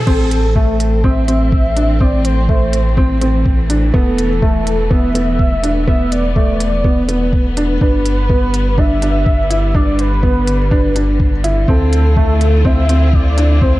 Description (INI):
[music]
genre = piano and strings electronica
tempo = 124 BPM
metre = 4/4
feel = straight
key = A minor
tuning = A4 = 440 Hz
[part]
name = rich chamber string section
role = sustained chords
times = 0.0-13.8 s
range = D3 to F4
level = -24 LUFS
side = left 1 dB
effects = sidechain pumping
[part]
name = warm velvety synth lead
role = melody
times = 0.1-13.8 s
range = A4 to E5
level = -21 LUFS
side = equal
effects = chorus
[part]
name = dark upright piano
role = riff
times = 0.1-13.8 s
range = A3 to E4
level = -18 LUFS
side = equal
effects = none
[part]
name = warm sub bass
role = bass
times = 0.1-13.8 s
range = E1 to D2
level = -16 LUFS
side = equal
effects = sidechain pumping
[part]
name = electronic kick drum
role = drums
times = 0.1-13.7 s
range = none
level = -14 LUFS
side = equal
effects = none
[part]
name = organic electronic drum kit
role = drums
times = 0.1-13.5 s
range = crash cymbal, hi-hat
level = -24 LUFS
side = equal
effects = none
[sound]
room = light reverb, digital ambience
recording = dark, warm production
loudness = -11 LUFS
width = side -17 dB against mid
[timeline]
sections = 0.1-13.8 A section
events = drop 0.1-13.8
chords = 0.1 Am; 3.9 Esus4; 7.8 G; 11.7 Dm7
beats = | 0.07 0.56 1.04 1.52 | 2.01 2.49 2.97 3.46 | 3.94 4.43 4.91 5.39 | 5.88 6.36 6.84 7.33 | 7.81 8.30 8.78 9.26 | 9.75 10.23 10.72 11.20 | 11.68 12.17 12.65 13.13 | 13.62